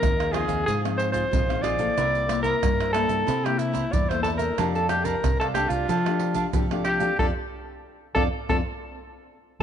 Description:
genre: samba and choro.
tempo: 92 BPM.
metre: 4/4.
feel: straight.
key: F major.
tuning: A4 = 441 Hz.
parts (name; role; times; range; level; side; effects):
breathy alto saxophone; melody; 0.0-9.6 s; E4 to D5; -26 LUFS; equal; none.
nylon-string guitar; accompaniment; 0.0-9.6 s; G2 to A4; -31 LUFS; left 11 dB; none.
fingered electric bass with an envelope filter; bass; 0.0-9.6 s; Bb1 to F3; -30 LUFS; left 1 dB; none.
egg shaker, surdo, pandeiro and tamborim; percussion; 0.0-9.6 s; none; -28 LUFS; right 2 dB; none.
cavaquinho; accompaniment; 0.2-8.6 s; D4 to F5; -32 LUFS; right 8 dB; none.
room: moderate echo chamber reverb, RT60 2.1 s.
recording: 1960s-style stereo with parts hard left and right, nothing above 10.6 kHz.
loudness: -22 LUFS.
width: side -9 dB against mid.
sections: 0.0-9.6 A section.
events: band accent 7.2-9.6.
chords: 0.0 Ab6; 2.0 C6; 4.6 F69.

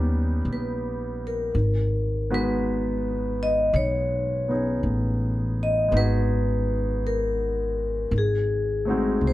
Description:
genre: jazz ballad.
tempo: 55 BPM.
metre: 4/4.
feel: swing 69% on 8ths.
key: G# minor.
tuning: A4 = 440 Hz.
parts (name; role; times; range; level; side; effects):
clear concert grand piano; accompaniment; 0.0-9.3 s; G3 to B4; -28 LUFS; left 1 dB; none.
upright bass; bass; 0.0-9.3 s; G#1 to D#2; -26 LUFS; equal; none.
vibraphone with medium hard mallets; melody; 0.5-9.3 s; G#4 to D#5; -26 LUFS; left 1 dB; none.
room: light reverb.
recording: none.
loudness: -22 LUFS.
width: side -16 dB against mid.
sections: 0.0-9.3 A section.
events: none.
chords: 0.0 D#7b13; 1.5 G#m9; 8.1 G#7b9.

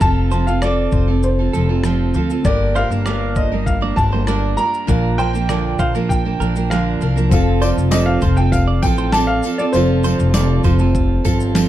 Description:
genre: acoustic pop.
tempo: 99 BPM.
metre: 4/4.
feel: straight.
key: unclear.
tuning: A4 = 439 Hz.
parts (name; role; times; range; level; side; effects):
clear upright piano; melody; 0.0-11.7 s; C5 to Bb5; -22 LUFS; equal; plate reverb.
picked steel-string acoustic guitar; accompaniment; 0.0-11.7 s; G2 to Bb4; -19 LUFS; right 4 dB; none.
upright bass; bass; 0.0-11.7 s; F1 to D2; -18 LUFS; left 1 dB; none.
dusty soul sampler-style drum kit; drums; 0.0-11.7 s; kick drum, rim click, shaker, snare drum; -21 LUFS; left 1 dB; none.
direct-recorded clean electric guitar; arpeggios; 0.3-11.4 s; A4 to D5; -28 LUFS; right 4 dB; none.
warm upright piano; accompaniment; 2.4-11.7 s; Bb3 to G5; -30 LUFS; left 7 dB; none.
tambourine; percussion; 7.3-11.7 s; none; -32 LUFS; left 8 dB; none.
room: light reverb.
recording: dark, warm production.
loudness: -14 LUFS.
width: side -13 dB against mid.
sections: 0.0-7.3 A section; 7.3-11.7 B section.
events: none.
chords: 0.0 F; 2.4 Gm; 4.9 Bb; 7.3 F.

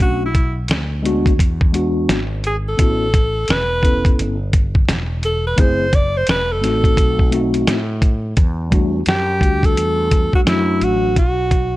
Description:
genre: hip hop, jazz-hop.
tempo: 86 BPM.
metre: 4/4.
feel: swing 62% on 16ths.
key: unclear.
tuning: A4 = 438 Hz.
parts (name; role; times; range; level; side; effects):
bright alto saxophone; melody; 0.0-11.8 s; E4 to D5; -19 LUFS; equal; none.
mellow tine electric piano; accompaniment; 0.0-11.2 s; F#3 to A4; -21 LUFS; left 2 dB; medium stereo tremolo.
fretless electric bass; bass; 0.0-11.8 s; E1 to A2; -22 LUFS; equal; none.
dusty soul sampler-style drum kit; drums; 0.0-11.7 s; hi-hat, kick drum, snare drum; -16 LUFS; equal; none.
room: digital ambience.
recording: none.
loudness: -14 LUFS.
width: side -17 dB against mid.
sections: 0.0-8.4 A section; 8.4-11.8 B section.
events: alto saxophone solo 0.0-8.4.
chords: 0.0 Bm7; 1.4 E9; 2.8 A; 5.6 F#m7b5; 7.0 B7b9; 8.4 Em11; 11.2 B5.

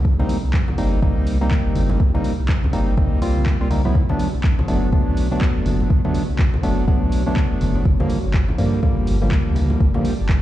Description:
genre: deep house.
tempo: 123 BPM.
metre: 4/4.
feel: swing 60% on 16ths.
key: unclear.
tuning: A4 = 439 Hz.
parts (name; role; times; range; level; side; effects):
sub bass with octave; bass; 0.0-10.4 s; F#1 to G2; -21 LUFS; equal; sidechain pumping.
electronic kick drum; drums; 0.0-10.4 s; none; -19 LUFS; equal; overdrive, vintage 12-bit sampler grit.
granular cloud pad; texture; 0.1-10.4 s; B3 to A5; -38 LUFS; equal; none.
percussive organ stab; stabs; 0.2-10.1 s; D3 to F4; -23 LUFS; equal; chorus, sidechain pumping, analog delay.
congas; percussion; 0.2-10.0 s; none; -27 LUFS; left 2 dB; none.
punchy analog drum machine; drums; 0.3-10.4 s; handclaps, hi-hat; -33 LUFS; equal; vintage 12-bit sampler grit.
room: little or no reverb.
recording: played on a big sound system in a bare room, cassette tape, large studio reverb.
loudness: -16 LUFS.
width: side -14 dB against mid.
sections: 0.0-10.4 A section.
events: none.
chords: 0.0 Cm7; 4.0 Bm7; 7.9 Gm7.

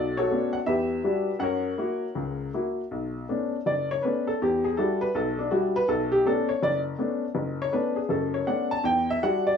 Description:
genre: solo jazz.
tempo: 162 BPM.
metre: 4/4.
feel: swing 66% on 8ths, rubato.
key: B minor.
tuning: A4 = 440 Hz.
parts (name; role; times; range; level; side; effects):
clear upright piano; solo; 0.0-9.6 s; F#1 to A5; -24 LUFS; left 1 dB; none.
room: wet studio reverb, RT60 0.6 s.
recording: band playing live in one room, small room ambience.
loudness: -24 LUFS.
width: side -7 dB against mid.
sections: 0.0-2.9 A section; 2.9-9.6 B section.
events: upright piano solo 2.9-9.6.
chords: 0.0 Bm9; 0.7 Em9; 1.4 F#7; 2.9 Bm9; 4.4 Em9; 5.9 Bm9; 8.8 Em9.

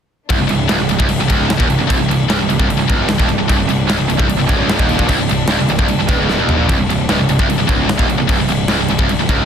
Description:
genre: heavy metal.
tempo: 150 BPM.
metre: 4/4.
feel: straight.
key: C minor.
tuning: A4 = 444 Hz.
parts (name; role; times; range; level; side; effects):
warm studio string section; sustained chords; 0.3-9.5 s; C3 to D4; -27 LUFS; left 2 dB; none.
heavy high-gain guitar; riff; 0.3-9.5 s; C2 to Bb2; -19 LUFS; left 12 dB; distortion.
heavy high-gain guitar; riff; 0.3-9.5 s; C2 to Bb2; -18 LUFS; right 12 dB; distortion.
fuzz picked electric bass; bass; 0.3-9.5 s; C1 to Bb1; -20 LUFS; equal; overdrive.
tight metal drum kit; drums; 0.3-9.4 s; crash cymbal, kick drum, snare drum, toms; -17 LUFS; left 1 dB; none.
room: light reverb.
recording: dense, heavily limited modern master.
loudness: -12 LUFS.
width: side -8 dB against mid.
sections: 0.3-9.5 A section.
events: drum fill 6.3-6.7.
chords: 0.3 Cm.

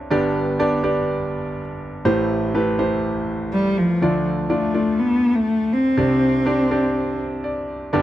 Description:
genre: pop.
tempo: 123 BPM.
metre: 4/4.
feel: straight.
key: unclear.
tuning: A4 = 440 Hz.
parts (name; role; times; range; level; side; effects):
clear concert grand piano; accompaniment; 0.0-8.0 s; G1 to F5; -20 LUFS; right 1 dB; none.
warm cello; melody; 3.5-7.2 s; F3 to C4; -19 LUFS; left 1 dB; slapback echo.
room: light reverb.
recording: dry, close 1970s-style studio recording.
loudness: -18 LUFS.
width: side -13 dB against mid.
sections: 0.0-8.0 A section.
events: grand piano fill 7.2-7.9.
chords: 0.1 G; 2.1 Am7; 4.0 Dm; 6.0 Csus2.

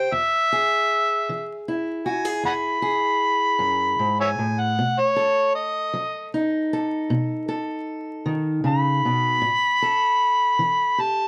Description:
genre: acoustic country blues, solo or duo.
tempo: 52 BPM (dotted quarters).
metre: 12/8.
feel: straight.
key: E major.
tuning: A4 = 440 Hz.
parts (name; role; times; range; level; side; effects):
overdriven harmonica; melody; 0.0-11.3 s; C#5 to B5; -22 LUFS; equal; none.
fingerpicked steel-string acoustic guitar; accompaniment; 0.0-11.3 s; E2 to A4; -28 LUFS; equal; none.
room: light reverb.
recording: vinyl crackle.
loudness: -22 LUFS.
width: mono.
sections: 0.0-11.3 A section.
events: harmonica solo 0.0-11.3.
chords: 0.1 E; 4.8 B7; 9.4 A5.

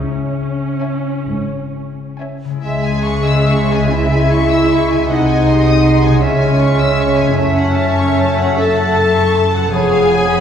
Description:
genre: classical, slow romantic movement for symphony orchestra.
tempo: 43-55 BPM (dotted quarters).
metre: 6/8.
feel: rubato.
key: C# minor.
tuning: A4 = 440 Hz.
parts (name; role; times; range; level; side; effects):
dark symphonic viola section; accompaniment; 0.0-10.4 s; G#3 to A4; -23 LUFS; right 2 dB; none.
concert harp; arpeggios; 0.0-10.4 s; E#2 to C#5; -23 LUFS; left 6 dB; none.
dark symphonic double bass section; bass; 0.0-10.4 s; E#1 to C#2; -20 LUFS; right 2 dB; none.
warm studio cello section; bass; 0.0-10.4 s; E#2 to C#3; -20 LUFS; right 1 dB; none.
dark studio violin section; melody; 0.8-10.4 s; C#5 to E6; -23 LUFS; left 3 dB; none.
warm studio violin section; second line; 0.8-10.4 s; G#4 to A5; -24 LUFS; left 3 dB; none.
bright silver concert flute; second line; 2.6-10.4 s; C#5 to F#5; -24 LUFS; equal; none.
clear clarinet; second line; 2.6-10.4 s; G#3 to A4; -22 LUFS; left 1 dB; none.
clear bassoon; accompaniment; 2.6-10.4 s; G#3 to B3; -22 LUFS; right 2 dB; none.
warm French horn section; sustained chords; 2.6-10.4 s; G#3 to A4; -17 LUFS; left 2 dB; none.
room: wet concert hall reverb, RT60 1.8 s.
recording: heard from further back in the room.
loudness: -12 LUFS.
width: side -8 dB against mid.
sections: 0.0-2.6 A section; 2.6-10.4 B section.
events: none.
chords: 0.0 C#m; 5.1 G#7/B#; 6.2 C#m; 7.4 F#m7; 9.8 C#7/E#.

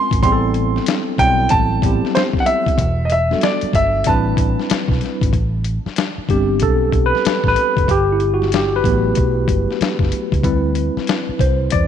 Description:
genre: R&B, neo-soul.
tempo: 94 BPM.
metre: 4/4.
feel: swing 62% on 16ths.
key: A dorian.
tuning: A4 = 441 Hz.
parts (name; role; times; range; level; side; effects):
clear grand piano; melody; 0.0-5.0 s; C5 to C6; -18 LUFS; right 1 dB; none.
tine electric piano; accompaniment; 0.0-11.9 s; F#3 to D5; -19 LUFS; equal; medium stereo tremolo.
vintage muted fingered electric bass; bass; 0.1-11.9 s; E1 to E2; -20 LUFS; right 1 dB; none.
dusty soul sampler-style drum kit; drums; 0.1-11.9 s; hi-hat, kick drum, snare drum; -20 LUFS; left 3 dB; none.
room: light reverb, digital ambience.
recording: 1960s-style stereo.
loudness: -14 LUFS.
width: side -9 dB against mid.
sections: 0.0-5.3 A section; 5.3-11.9 B section.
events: tine electric piano solo 5.3-11.9.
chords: 0.2 Am9; 2.8 Em11; 4.1 Am11; 7.9 Gmaj7; 10.4 D13sus4.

